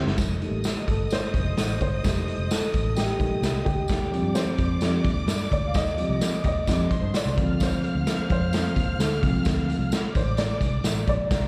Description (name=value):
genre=uptempo 1960s-style soul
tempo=129 BPM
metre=4/4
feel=straight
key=F mixolydian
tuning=A4 = 440 Hz
part: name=vintage muted picked electric bass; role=bass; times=0.0-11.5 s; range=F1 to G2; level=-30 LUFS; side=equal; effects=none
part: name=raw garage drum kit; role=drums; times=0.1-11.4 s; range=hi-hat, kick drum, snare drum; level=-28 LUFS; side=equal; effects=none
part: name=warm symphonic violin section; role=second line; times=0.2-11.5 s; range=Bb4 to F6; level=-38 LUFS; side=equal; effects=slapback echo
part: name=tambourine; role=percussion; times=0.2-11.4 s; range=none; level=-41 LUFS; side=equal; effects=none
part: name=dark upright piano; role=accompaniment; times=0.4-11.5 s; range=Eb3 to F5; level=-30 LUFS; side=equal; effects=slapback echo
room=studio reverb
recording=live gig heard through the venue's PA, club reverb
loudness=-25 LUFS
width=mono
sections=0.2-11.5 A section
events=drum fill 0.0; upright piano solo 0.2-11.5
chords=0.2 F7; 3.9 Eb6; 7.4 Dm7